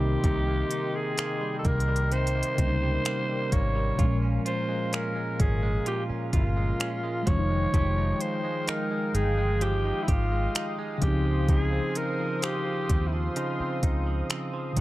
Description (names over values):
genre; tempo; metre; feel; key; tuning
contemporary R&B; 64 BPM; 4/4; straight; unclear; A4 = 440 Hz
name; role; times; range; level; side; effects
growling alto saxophone; melody; 0.0-14.8 s; E4 to Db5; -31 LUFS; equal; digital delay
mellow tine electric piano; accompaniment; 0.0-14.8 s; Bb2 to Eb4; -32 LUFS; left 1 dB; fast stereo tremolo
warm analog pad; sustained chords; 0.0-14.8 s; Ab3 to Eb6; -37 LUFS; left 1 dB; wide subtle chorus
direct-recorded clean electric guitar; arpeggios; 0.0-14.8 s; Bb2 to G4; -35 LUFS; right 4 dB; none
vintage muted fingered electric bass; bass; 0.0-14.8 s; F1 to Eb2; -27 LUFS; equal; none
smooth R&B drum kit; drums; 0.2-14.8 s; finger snaps, hi-hat, kick drum; -26 LUFS; equal; none
room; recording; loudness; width
digital ambience; dark, warm production; -24 LUFS; side -17 dB against mid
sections
0.0-14.8 A section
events
none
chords
0.0 Cm7; 4.0 Bbm7; 7.3 Fm9; 11.0 Dbmaj9